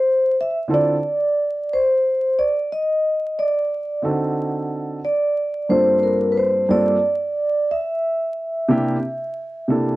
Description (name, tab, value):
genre	hip hop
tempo	90 BPM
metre	4/4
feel	swing 60% on 16ths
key	unclear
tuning	A4 = 441 Hz
part	vibraphone with soft mallets	melody	0.0-9.7 s	Bb4 to E5	-18 LUFS	equal	slapback echo
part	dark baby grand piano	accompaniment	0.7-10.0 s	G2 to A4	-20 LUFS	right 1 dB	none
room	light reverb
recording	dry, close 1970s-style studio recording, vinyl crackle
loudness	-18 LUFS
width	side -18 dB against mid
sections	0.0-10.0 A section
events	none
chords	0.0 Dm7; 2.4 D7b9; 5.0 Gm11; 7.7 C7